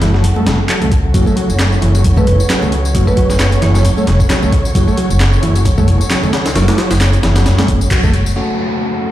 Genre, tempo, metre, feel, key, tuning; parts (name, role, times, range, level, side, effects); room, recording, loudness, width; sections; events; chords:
breakbeat, breaks; 133 BPM; 4/4; swing 56% on 16ths; F# minor; A4 = 440 Hz
muted symphonic string section; sustained chords; 0.0-9.1 s; C#3 to C#5; -22 LUFS; equal; vintage 12-bit sampler grit, sidechain pumping, low-pass filter
combo organ; riff; 0.0-8.1 s; E3 to A3; -19 LUFS; right 1 dB; tube saturation, vintage 12-bit sampler grit, dub echo
upright bass; bass; 0.0-8.3 s; F#1 to F#2; -14 LUFS; equal
breakbeat sampler-style drum kit; drums; 0.0-8.3 s; hi-hat, kick drum, snare drum; -16 LUFS; equal
congas; percussion; 0.0-8.2 s; -23 LUFS; left 4 dB
electronic handclaps and tambourine; drums; 0.7-8.3 s; -23 LUFS; left 1 dB; overdrive
marimba with hard mallets; melody; 2.2-3.8 s; B4 to C#5; -22 LUFS; right 3 dB; old record sound, dub echo
bell-like tine electric piano; stabs; 8.4-9.1 s; A3 to F#4; -18 LUFS; left 2 dB; dub echo
downlifter; sound effects; 8.4-9.1 s; -21 LUFS; equal
light reverb, small room ambience; played on a big sound system in a bare room, large studio reverb; -10 LUFS; side -13 dB against mid
0.0-8.4 A section
band accent 7.9
0.0 F#m